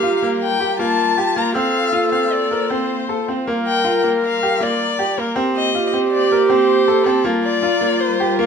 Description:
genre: contemporary instrumental, chamber music in an uneven meter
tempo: 158 BPM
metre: 5/4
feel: straight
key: G minor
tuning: A4 = 438 Hz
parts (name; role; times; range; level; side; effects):
- dark violin; melody; 0.0-8.5 s; A4 to Bb5; -21 LUFS; left 6 dB; none
- mellow clarinet; second line; 0.0-8.5 s; F4 to Bb4; -18 LUFS; right 2 dB; none
- dark studio string section; sustained chords; 0.0-8.5 s; G3 to C5; -27 LUFS; left 2 dB; none
- bright grand piano; arpeggios; 0.0-8.5 s; Bb3 to Bb4; -21 LUFS; equal; none
room: moderate studio reverb, RT60 0.8 s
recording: none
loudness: -15 LUFS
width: side -6 dB against mid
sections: 0.0-8.5 A section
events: none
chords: 0.0 Gm7; 1.6 Fsus4; 3.5 Gm7; 5.4 Fsus4; 7.3 Gm7

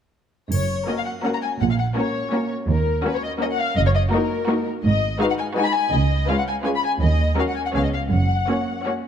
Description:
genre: cinematic, playful, whimsical film cue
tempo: 166 BPM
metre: 3/4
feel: straight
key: F# major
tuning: A4 = 439 Hz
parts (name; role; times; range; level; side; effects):
- muted studio violin section; melody; 0.5-8.8 s; A#4 to B5; -24 LUFS; left 5 dB; none
- muted studio cello section; bass; 0.5-8.4 s; C#2 to A#2; -24 LUFS; right 2 dB; none
- muted symphonic double bass section; bass; 0.5-8.4 s; F#1 to D#2; -24 LUFS; right 2 dB; none
- triangle; percussion; 0.5-1.2 s; none; -38 LUFS; left 3 dB; none
- muted symphonic violin section; second line; 0.9-9.1 s; E#4 to C#5; -28 LUFS; left 4 dB; none
- muted studio viola section; accompaniment; 0.9-9.1 s; F#3 to D#4; -26 LUFS; equal; none
room: moderate scoring stage reverb, RT60 1.6 s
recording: none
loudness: -19 LUFS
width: side -8 dB against mid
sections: 0.5-9.1 A section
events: none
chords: 0.5 F#; 1.6 F#/A#; 2.7 D#m7; 3.8 D#m/F#; 4.8 G#m7; 5.9 C#9; 7.0 D#m7; 7.7 C#7; 8.1 F#

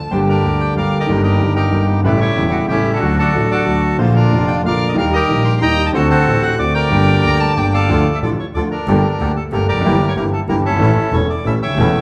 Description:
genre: tango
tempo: 185 BPM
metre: 3/4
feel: rubato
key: G minor, D harmonic minor from 7.9 s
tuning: A4 = 440 Hz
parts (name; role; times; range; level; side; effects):
- warm violin; second line; 0.0-0.1, 7.2-7.9 s; G5 to Bb5; -26 LUFS; equal; none
- bandoneon; melody; 0.1-12.0 s; C4 to C6; -21 LUFS; equal; none
- clear concert grand piano; accompaniment; 0.1-11.9 s; C#1 to A4; -18 LUFS; equal; none
- bandoneon; stabs; 0.1-11.9 s; A3 to A4; -31 LUFS; equal; none
- clear double bass; bass; 0.1-11.9 s; E1 to Eb2; -23 LUFS; equal; none
room: wet large studio reverb, RT60 1.4 s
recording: band playing live in one room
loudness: -15 LUFS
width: mono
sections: 0.1-7.9 A section; 7.9-12.0 B section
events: none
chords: 0.1 Gm; 1.1 Eb/G; 2.0 A7; 3.0 D; 4.0 Bb; 5.0 Eb; 5.9 D7; 6.9 Gm; 7.9 Dm; 8.9 Gmadd9; 9.8 Edim/G; 10.8 A

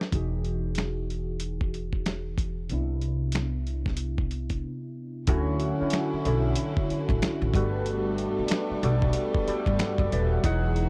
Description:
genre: R&B, neo-soul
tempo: 93 BPM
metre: 4/4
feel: swing 61% on 16ths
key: unclear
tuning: A4 = 444 Hz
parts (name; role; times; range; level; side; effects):
- overdriven tine electric piano; accompaniment; 0.0-10.9 s; C3 to B5; -32 LUFS; equal; phaser
- dusty soul sampler-style drum kit; drums; 0.0-10.9 s; finger snaps, hi-hat, kick drum, snare drum; -31 LUFS; equal; overdrive
- upright bass; bass; 0.1-10.9 s; Eb1 to D2; -31 LUFS; equal; none
- bright studio string section; sustained chords; 5.3-10.9 s; D3 to F#4; -41 LUFS; equal; none
- mellow trombone section; stabs; 5.3-10.9 s; A2 to D#4; -37 LUFS; equal; none
room: studio reverb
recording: dry, close 1970s-style studio recording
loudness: -28 LUFS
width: mono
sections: 0.0-5.3 A section; 5.3-10.9 B section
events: break 4.6-5.3; tine electric piano fill 9.1-10.4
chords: 0.1 Emaj9; 2.7 Cmaj9; 5.3 Dmaj9; 7.5 Gmaj9

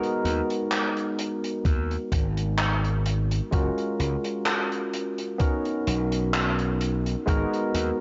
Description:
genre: vaporwave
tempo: 64 BPM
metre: 4/4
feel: swing 54% on 16ths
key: G# dorian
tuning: A4 = 440 Hz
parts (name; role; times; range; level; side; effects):
- barky tine electric piano; accompaniment; 0.0-8.0 s; G#3 to A#4; -30 LUFS; equal; subtle chorus, analog delay
- crunchy breakbeat drum kit; drums; 0.0-7.9 s; handclaps, hi-hat; -32 LUFS; equal; none
- gritty slap bass; bass; 0.2-7.9 s; F#1 to D#2; -29 LUFS; equal; overdrive
- electronic kick drum; drums; 1.6-7.5 s; none; -26 LUFS; equal; none
room: light reverb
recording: cassette tape, nothing above 7.6 kHz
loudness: -26 LUFS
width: mono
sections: 0.0-8.0 A section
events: none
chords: 0.0 G#m7; 3.5 F#maj9; 5.4 Bmaj9; 7.3 G#m7

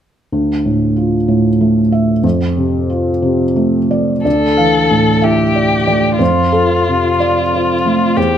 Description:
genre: neoclassical piano and strings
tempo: 62 BPM (dotted quarters)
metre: 6/8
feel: rubato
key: D minor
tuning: A4 = 440 Hz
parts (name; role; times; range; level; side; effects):
- felt-muted upright piano; accompaniment; 0.3-8.4 s; D2 to F5; -12 LUFS; right 1 dB; none
- muted violin; melody; 4.3-8.4 s; F4 to A4; -15 LUFS; left 4 dB; slapback echo
room: moderate large studio reverb, RT60 1.2 s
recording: close, detailed microphones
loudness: -11 LUFS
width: side -9 dB against mid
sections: 0.3-4.2 A section; 4.2-8.4 B section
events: none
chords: 0.3 Dmadd9; 2.2 F6; 4.2 Dmadd9; 6.2 F6

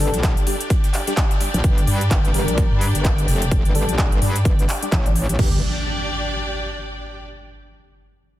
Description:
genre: bass house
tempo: 128 BPM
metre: 4/4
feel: swing 59% on 16ths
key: G minor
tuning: A4 = 441 Hz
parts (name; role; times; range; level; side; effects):
- percussive organ stab; stabs; 0.0-5.6 s; G3 to Bb4; -28 LUFS; left 2 dB; ensemble chorus, vintage 12-bit sampler grit, sidechain pumping, tape echo
- metallic wobble bass; bass; 0.0-5.6 s; F1 to G2; -21 LUFS; equal; distortion, chorus, tube saturation, sidechain pumping
- big-room dance drum kit; drums; 0.0-5.4 s; handclaps, hi-hat; -27 LUFS; equal; overdrive, small room ambience
- breakbeat sampler-style drum kit; drums; 0.0-1.5 s; hi-hat, snare drum; -36 LUFS; equal; none
- clear studio string section; texture; 0.0-7.2 s; D4 to G5; -28 LUFS; equal; sidechain pumping
- big-room dance drum kit; drums; 0.2-5.5 s; crash cymbal, kick drum, toms; -19 LUFS; equal; overdrive, small room ambience
- impact; sound effects; 5.4-7.3 s; none; -29 LUFS; equal; none
room: digital ambience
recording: dense, heavily limited modern master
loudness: -17 LUFS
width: side -14 dB against mid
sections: 0.0-5.4 A section; 5.4-7.3 B section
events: filter sweep on synth stab 0.0-5.4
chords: 0.0 G5

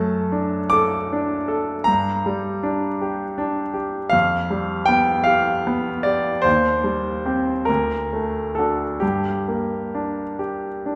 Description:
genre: classical, romantic nocturne for solo piano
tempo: 43-54 BPM (dotted quarters)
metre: 12/8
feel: rubato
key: G minor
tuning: A4 = 440 Hz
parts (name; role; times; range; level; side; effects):
- bright grand piano; solo; 0.0-11.0 s; D2 to D6; -22 LUFS; equal; none
room: wet recital hall reverb, RT60 1.5 s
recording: heard from further back in the room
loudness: -22 LUFS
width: mono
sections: 0.0-11.0 A section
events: none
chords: 0.0 D/F#; 1.9 Gm; 4.1 G7/F; 6.5 Cm/Eb; 7.7 D; 9.0 Gm

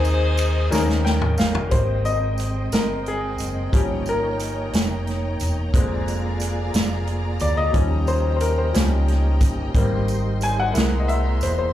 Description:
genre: slow gospel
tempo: 60 BPM (dotted quarters)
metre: 6/8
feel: straight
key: Ab major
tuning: A4 = 440 Hz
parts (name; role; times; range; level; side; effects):
- edgy saxophone section; melody; 0.0-1.1 s; Eb4 to C5; -25 LUFS; left 3 dB; slapback echo, plate reverb
- bright upright piano; accompaniment; 0.0-11.7 s; D3 to Ab5; -25 LUFS; left 3 dB; plate reverb, slapback echo
- tonewheel organ; sustained chords; 0.0-11.7 s; G3 to Eb6; -30 LUFS; right 2 dB; fast rotary speaker, chorus vibrato, plate reverb
- hollow-body short-scale fingered electric bass; bass; 0.0-11.7 s; Fb1 to Eb2; -23 LUFS; equal; none
- tambourine; percussion; 0.0-11.7 s; none; -37 LUFS; right 4 dB; none
- swinging big-band drum kit; drums; 0.1-11.6 s; hi-hat, kick drum, ride cymbal, snare drum, toms; -22 LUFS; equal; none
- rich studio string section; sustained chords; 1.7-11.7 s; C5 to C6; -34 LUFS; equal; plate reverb
room: light reverb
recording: live gig heard through the venue's PA, club reverb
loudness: -19 LUFS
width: side -12 dB against mid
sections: 0.0-1.7 A section; 1.7-11.7 B section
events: drum fill 0.7-1.7; upright piano fill 0.7-1.7; upright piano solo 1.7-11.7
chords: 0.0 Ab/Eb; 0.7 Eb7; 1.7 Abmaj7; 3.7 Eb7/G; 5.7 Bb7/F; 7.7 Eb7; 9.8 Abmaj7; 10.8 Caug7

